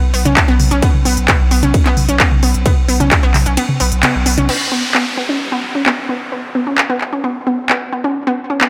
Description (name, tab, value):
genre	driving peak-time techno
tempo	131 BPM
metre	4/4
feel	straight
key	unclear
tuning	A4 = 444 Hz
part	analog pluck	riff	0.1-8.7 s	B3 to C#4	-20 LUFS	equal	chorus, sidechain pumping, digital delay
part	saturated sub bass	bass	0.1-4.5 s	B1	-19 LUFS	equal	overdrive, sidechain pumping, low-pass filter
part	techno drum kit	drums	0.1-8.7 s	crash cymbal, handclaps, hi-hat, ride cymbal, toms	-18 LUFS	equal	sidechain pumping on hats, sidechain pumping on toms, sidechain pumping on cymbals
part	electronic kick drum	drums	0.4-3.2 s	none	-16 LUFS	equal	none
part	downlifter	sound effects	4.5-8.2 s	none	-26 LUFS	equal	none
room	moderate plate reverb, RT60 2.0 s, digital ambience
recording	none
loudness	-14 LUFS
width	mono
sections	0.0-4.5 A section; 4.5-8.7 B section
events	drop 0.0-4.5; kick drops out 3.6-4.5; band accent 4.0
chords	0.0 Bsus2